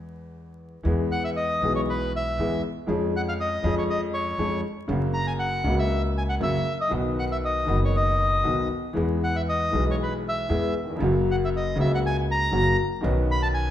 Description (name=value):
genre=tango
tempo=118 BPM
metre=4/4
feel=rubato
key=E major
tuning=A4 = 441 Hz
part: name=warm upright piano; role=accompaniment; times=0.0-13.7 s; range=F#1 to G#4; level=-26 LUFS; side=left 2 dB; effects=none
part: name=upright bass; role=bass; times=0.0-13.7 s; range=F#1 to E#2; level=-28 LUFS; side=equal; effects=none
part: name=bandoneon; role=melody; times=1.1-13.7 s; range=B4 to B5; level=-27 LUFS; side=equal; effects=none
room=wet recital hall reverb, RT60 1.5 s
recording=minimal, uncompressed stereo recording, vinyl crackle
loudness=-22 LUFS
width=side -11 dB against mid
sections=0.9-13.7 A section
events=none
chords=0.0 E; 2.9 C#/E#; 4.9 F#; 6.9 B; 9.0 E; 11.0 F#; 13.0 Badd9